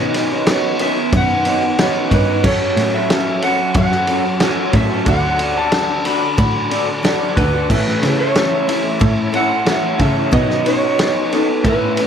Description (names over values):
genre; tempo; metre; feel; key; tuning
folk rock and heartland rock; 91 BPM; 4/4; straight; unclear; A4 = 440 Hz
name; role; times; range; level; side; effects
electric slide guitar; melody; 0.0-12.1 s; A4 to B5; -20 LUFS; equal; dub echo
picked steel-string acoustic guitar; accompaniment; 0.0-12.1 s; A2 to B4; -24 LUFS; left 6 dB; dub echo
tonewheel organ; sustained chords; 0.0-12.1 s; D#3 to D5; -30 LUFS; right 1 dB; none
electric guitar through a small old amp; riff; 0.0-12.1 s; A2 to C#5; -20 LUFS; right 2 dB; wide subtle chorus
rich cello; bass; 0.0-12.1 s; D2 to C#3; -21 LUFS; equal; none
loose indie drum kit; drums; 0.1-12.1 s; crash cymbal, kick drum, ride cymbal, snare drum; -19 LUFS; equal; dub echo
bright upright piano; accompaniment; 2.4-12.1 s; E4 to F#5; -29 LUFS; right 8 dB; none
room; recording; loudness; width
moderate spring reverb, RT60 2.2 s; echo-heavy mix; -14 LUFS; side -8 dB against mid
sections
0.0-12.1 A section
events
none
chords
0.0 Badd9; 2.4 F#m; 5.1 D; 7.7 A; 10.3 Badd9